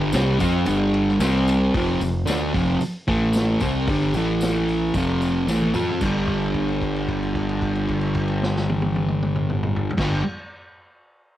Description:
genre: garage rock duo or trio.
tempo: 112 BPM.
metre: 4/4.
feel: straight.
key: unclear.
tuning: A4 = 445 Hz.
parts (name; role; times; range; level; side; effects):
fuzz guitar; riff; 0.0-10.2 s; F2 to F4; -20 LUFS; equal; distortion, cassette tape.
growling fingered electric bass; bass; 0.0-10.2 s; F1 to F2; -29 LUFS; equal; overdrive.
vintage drum kit; drums; 0.1-10.1 s; crash cymbal, hi-hat, kick drum, ride cymbal, snare drum, toms; -28 LUFS; equal; cassette tape.
tambourine; percussion; 0.1-6.3 s; none; -41 LUFS; left 3 dB; none.
room: light reverb.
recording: home recording on cassette.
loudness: -19 LUFS.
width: side -13 dB against mid.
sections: 0.0-1.7 A section; 1.7-6.0 B section; 6.0-10.3 C section.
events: drum fill 5.5-6.0; held note 6.0-10.0.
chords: 0.0 G5; 1.2 C5; 1.7 F5; 3.1 A5; 3.6 Gsus4; 4.1 A5; 4.9 F5; 6.0 G5.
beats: 0.14 0.67 1.20 | 1.74 2.27 2.81 3.34 | 3.87 4.41 4.94 5.48 | 6.01 6.55 7.08 7.62 | 8.15 8.69 9.22 9.76.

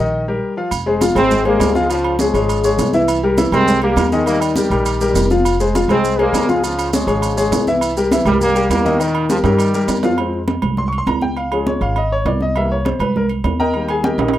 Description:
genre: latin, salsa.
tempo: 203 BPM.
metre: 4/4.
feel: straight.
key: F minor.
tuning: A4 = 443 Hz.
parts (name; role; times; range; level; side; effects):
clear upright piano; accompaniment; 0.0-14.4 s; Eb3 to Db6; -17 LUFS; left 2 dB; none.
upright bass; bass; 0.0-14.4 s; F1 to G2; -22 LUFS; right 1 dB; none.
agogo bells and timbales; percussion; 0.7-14.4 s; none; -25 LUFS; right 7 dB; none.
congas; percussion; 0.7-14.4 s; none; -21 LUFS; equal; none.
maracas; percussion; 0.7-10.2 s; none; -30 LUFS; right 4 dB; none.
bright trombone section; melody; 1.2-10.0 s; Bb2 to C4; -20 LUFS; right 2 dB; none.
room: moderate small room reverb, RT60 0.5 s.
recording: rough home demo mix.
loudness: -14 LUFS.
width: side -13 dB against mid.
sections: 0.7-10.2 A section; 10.2-14.4 B section.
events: break 0.1-0.7; drum fill 9.4-10.2, 14.2; upright piano solo 10.2-14.4.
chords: 0.0 Eb; 0.7 Fm; 1.9 Db; 3.1 C7; 4.3 Eb; 5.4 Fm; 6.6 Db; 7.8 C7; 9.0 Eb; 10.2 Fm; 11.4 Db; 12.6 C7; 13.7 Eb.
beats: 0.12 0.42 | 0.72 1.01 1.31 1.60 | 1.90 2.19 2.49 2.79 | 3.08 3.38 3.67 3.97 | 4.26 4.56 4.86 5.15 | 5.45 5.74 6.04 6.33 | 6.63 6.93 7.22 7.52 | 7.81 8.11 8.40 8.70 | 9.00 9.29 9.59 9.89 | 10.18 10.48 10.78 11.07 | 11.37 11.67 11.96 12.26 | 12.56 12.85 13.15 13.45 | 13.74 14.04 14.34.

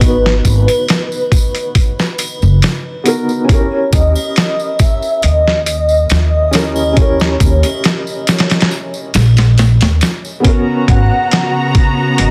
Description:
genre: trip hop.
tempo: 69 BPM.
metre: 4/4.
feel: straight.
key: unclear.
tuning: A4 = 438 Hz.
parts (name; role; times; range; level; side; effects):
pure breathy sine lead; melody; 0.0-12.3 s; B4 to F#5; -20 LUFS; equal; phaser, ensemble chorus, tape echo.
felt-muted upright piano; accompaniment; 0.0-12.3 s; B3 to B4; -21 LUFS; equal; tremolo, tape echo.
upright bass; bass; 0.0-12.3 s; F#1 to D#2; -14 LUFS; equal; none.
boom bap sampler-style drum kit; drums; 0.0-12.3 s; hi-hat, kick drum, snare drum; -15 LUFS; equal; vintage 12-bit sampler grit.
tambourine and triangle; percussion; 0.0-10.4 s; none; -30 LUFS; equal; none.
rich symphonic string section; sustained chords; 10.4-12.3 s; C#3 to A#5; -18 LUFS; equal; none.
room: studio ambience.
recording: dense, heavily limited modern master, vinyl crackle.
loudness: -13 LUFS.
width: mono.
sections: 0.0-10.4 A section; 10.4-12.3 B section.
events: none.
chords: 0.0 G#m7; 3.5 D#7b9; 10.4 G#m11.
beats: | 0.01 0.88 1.75 2.62 | 3.49 4.36 5.23 6.10 | 6.97 7.84 8.71 9.58 | 10.45 11.32 12.19.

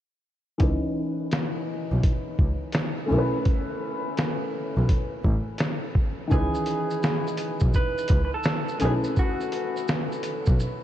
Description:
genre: lo-fi hip hop.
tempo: 84 BPM.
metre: 4/4.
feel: swing 65% on 16ths.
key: C# minor.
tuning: A4 = 440 Hz.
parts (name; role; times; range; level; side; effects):
felt-muted upright piano; accompaniment; 0.6-10.8 s; D#3 to B4; -29 LUFS; left 1 dB; low-pass filter.
clear double bass; bass; 0.6-10.6 s; A1 to C#2; -26 LUFS; equal; none.
lo-fi sampler-style drum kit; drums; 0.6-10.8 s; hi-hat, kick drum, shaker, snare drum; -26 LUFS; equal; none.
electric guitar through a small old amp; melody; 6.3-9.9 s; F#4 to B4; -30 LUFS; right 2 dB; low-pass filter, ping-pong delay.
room: moderate huge ambient reverb, RT60 7.7 s.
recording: dreamy mix soaked in reverb, cassette tape.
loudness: -23 LUFS.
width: side -12 dB against mid.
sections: 0.6-6.3 A section; 6.3-10.8 B section.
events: filter sweep on felt piano 0.6-6.3.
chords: 0.6 C#m9; 3.1 B9sus4; 6.3 C#m9; 8.8 B9sus4.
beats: | 0.60 1.32 2.03 2.75 | 3.46 4.18 4.89 5.61 | 6.32 7.03 7.75 8.46 | 9.18 9.89 10.61.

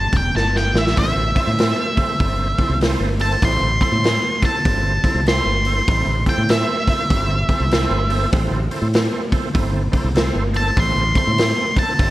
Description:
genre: blues rock power trio and southern rock.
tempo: 98 BPM.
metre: 4/4.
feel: swing 63% on 8ths.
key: A minor.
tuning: A4 = 441 Hz.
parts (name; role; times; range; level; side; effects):
octave-fuzz lead guitar; melody; 0.0-12.1 s; E5 to C6; -21 LUFS; equal; distortion.
modern bright fingered electric bass; bass; 0.0-12.1 s; E1 to A2; -20 LUFS; equal; none.
raw garage drum kit; drums; 0.1-12.1 s; hi-hat, kick drum, snare drum; -19 LUFS; equal; none.
overdriven tonewheel organ; sustained chords; 1.0-12.1 s; C4 to C5; -28 LUFS; right 4 dB; chorus vibrato, slow rotary speaker.
room: light reverb, small room ambience.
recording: none.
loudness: -16 LUFS.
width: side -16 dB against mid.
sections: 0.0-12.1 A section.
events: lead electric guitar solo 0.0-12.1; drum fill 0.4-1.0.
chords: 0.0 Am.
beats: 0.36 | 0.97 1.59 2.20 2.81 | 3.43 4.04 4.65 5.27 | 5.88 6.49 7.11 7.72 | 8.33 8.94 9.55 10.16 | 10.77 11.38 11.99.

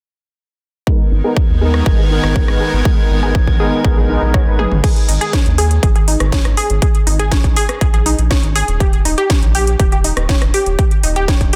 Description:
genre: progressive house.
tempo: 121 BPM.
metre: 4/4.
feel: straight.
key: G# harmonic minor.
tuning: A4 = 440 Hz.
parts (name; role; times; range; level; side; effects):
evolving wavetable pad; sustained chords; 1.2-4.8 s; D#3 to A#4; -27 LUFS; equal; ensemble chorus, built-in reverb, sidechain pumping.
unison pluck; arpeggios; 0.9-11.6 s; D#4 to C#5; -23 LUFS; equal; sidechain pumping, delay.
soft supersaw; stabs; 0.9-4.6 s; G#3 to B4; -23 LUFS; equal; sidechain pumping, low-pass filter, delay.
electronic kick drum; drums; 0.9-11.5 s; none; -16 LUFS; equal; overdrive.
drifting glass-harmonics texture; texture; 1.3-4.8 s; G#6; -31 LUFS; equal; chorus, built-in reverb, sidechain pumping.
round analog bass; bass; 1.1-11.5 s; D#1 to D#2; -19 LUFS; equal; sidechain pumping.
house drum kit; drums; 1.7-11.6 s; crash cymbal, hi-hat, rim click, snare drum, toms; -24 LUFS; equal; overdrive, sidechain pumping on toms, sidechain pumping on hats, sidechain pumping on cymbals.
room: little or no reverb.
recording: dense, heavily limited modern master.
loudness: -14 LUFS.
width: mono.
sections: 0.9-4.8 A section; 4.8-11.6 B section.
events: filter sweep on analog synth bass 0.9-4.8; filter sweep on synth pluck 0.9-4.8; drum fill 4.6.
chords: 0.9 G#madd9; 4.8 G#sus2; 8.8 D#.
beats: | 0.87 1.37 1.86 2.36 | 2.85 3.35 3.85 4.34 | 4.84 5.33 5.83 6.33 | 6.82 7.32 7.81 8.31 | 8.80 9.30 9.80 10.29 | 10.79 11.28.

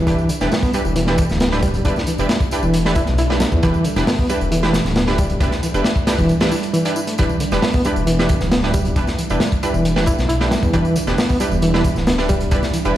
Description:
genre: breakbeat, breaks.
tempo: 135 BPM.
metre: 4/4.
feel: straight.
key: E minor.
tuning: A4 = 440 Hz.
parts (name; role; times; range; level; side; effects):
deep dark ambient pad; sustained chords; 0.0-13.0 s; G3 to A4; -26 LUFS; right 1 dB; chorus, built-in reverb, sidechain pumping.
barky reed electric piano; riff; 0.0-12.8 s; D3 to E4; -21 LUFS; equal; tube saturation, tremolo, low-pass filter, ping-pong delay.
detuned saw bass; bass; 0.0-12.9 s; D1 to E2; -22 LUFS; equal; none.
orchestra-hit-like synth stab; stabs; 0.1-13.0 s; D4 to B4; -23 LUFS; right 2 dB; built-in reverb, ping-pong delay.
crunchy breakbeat drum kit; drums; 0.1-12.8 s; hi-hat, kick drum, snare drum; -20 LUFS; equal; none.
tambourine; drums; 0.1-12.9 s; none; -35 LUFS; right 1 dB; overdrive.
room: light reverb, small room ambience.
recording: played on a big sound system in a bare room, large studio reverb.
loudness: -15 LUFS.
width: side -12 dB against mid.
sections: 0.0-13.0 A section.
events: none.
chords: 0.0 Em7.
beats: | 0.07 0.52 0.96 1.41 | 1.85 2.29 2.74 3.18 | 3.63 4.07 4.52 4.96 | 5.41 5.85 6.29 6.74 | 7.18 7.63 8.07 8.52 | 8.96 9.41 9.85 10.29 | 10.74 11.18 11.63 12.07 | 12.52 12.96.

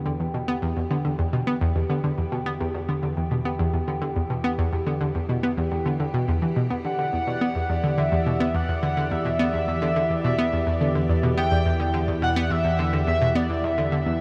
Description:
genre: ambient, sequencer-driven space music.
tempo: 106 BPM.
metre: 4/4.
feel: straight.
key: E minor.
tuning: A4 = 440 Hz.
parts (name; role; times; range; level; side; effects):
evolving wavetable pad; sustained chords; 0.0-14.2 s; E3 to B5; -35 LUFS; equal; chorus, built-in reverb.
analog pluck; riff; 0.0-14.1 s; E2 to B3; -27 LUFS; equal; chorus, tape echo.
analog drone; bass; 0.0-14.2 s; E2; -33 LUFS; equal; chorus.
pulsing gated texture; texture; 0.0-14.2 s; G4 to G5; -35 LUFS; equal; chorus, built-in reverb.
pulse-width lead; melody; 6.9-14.2 s; D5 to G5; -29 LUFS; equal; chorus, tape echo.
room: moderate huge ambient reverb, RT60 8.0 s.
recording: none.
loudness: -24 LUFS.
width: mono.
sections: 0.0-14.2 A section.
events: fade-in on ambient pad 0.0-14.2; fade-in on synth drone 0.0-14.2.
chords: 0.0 Em.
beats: | 0.06 0.62 1.19 1.76 | 2.32 2.89 3.46 4.02 | 4.59 5.15 5.72 6.29 | 6.85 7.42 7.98 8.55 | 9.12 9.68 10.25 10.81 | 11.38 11.95 12.51 13.08 | 13.64.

